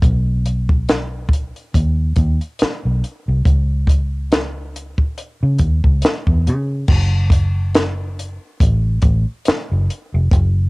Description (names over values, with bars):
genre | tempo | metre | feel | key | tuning
R&B, neo-soul | 70 BPM | 4/4 | swing 55% on 16ths | F# dorian | A4 = 440 Hz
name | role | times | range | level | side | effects
vintage muted fingered electric bass | bass | 0.0-10.7 s | E#1 to C#3 | -17 LUFS | equal | none
compact cocktail drum kit | drums | 0.0-10.5 s | crash cymbal, hi-hat, kick drum, snare drum | -16 LUFS | equal | none
room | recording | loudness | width
little or no reverb | home recording on cassette | -15 LUFS | side -26 dB against mid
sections
0.0-6.9 A section; 6.9-10.7 B section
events
none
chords
none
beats
| 0.03 0.88 1.74 2.60 | 3.45 4.31 5.17 6.03 | 6.88 7.74 8.60 9.45 | 10.31